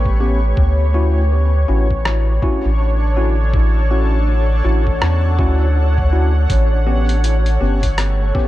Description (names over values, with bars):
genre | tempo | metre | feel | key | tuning
ambient dub | 81 BPM | 4/4 | swing 60% on 16ths | unclear | A4 = 440 Hz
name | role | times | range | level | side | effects
granular cloud pad | sustained chords | 0.0-8.5 s | A3 to F#5 | -25 LUFS | right 1 dB | built-in reverb
soft dub sub bass | bass | 0.0-8.3 s | G1 to E2 | -15 LUFS | equal | none
bubbling stepped-filter texture | texture | 0.0-8.5 s | C#5 | -26 LUFS | left 3 dB | chorus, built-in reverb
electronic kick drum | drums | 0.1-8.5 s | none | -19 LUFS | equal | small room ambience
tine electric piano | stabs | 0.2-8.5 s | B3 to G4 | -24 LUFS | left 2 dB | analog chorus, dub echo
lo-fi sampler-style drum kit | drums | 2.1-8.2 s | hi-hat, rim click | -24 LUFS | equal | small room ambience
room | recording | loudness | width
little or no reverb | echo-heavy mix | -13 LUFS | side -15 dB against mid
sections
0.0-8.5 A section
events
none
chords
0.0 A9; 0.6 Dmaj7; 6.5 A9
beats
| 0.57 1.31 2.05 2.79 | 3.54 4.28 5.02 5.76 | 6.50 7.24 7.98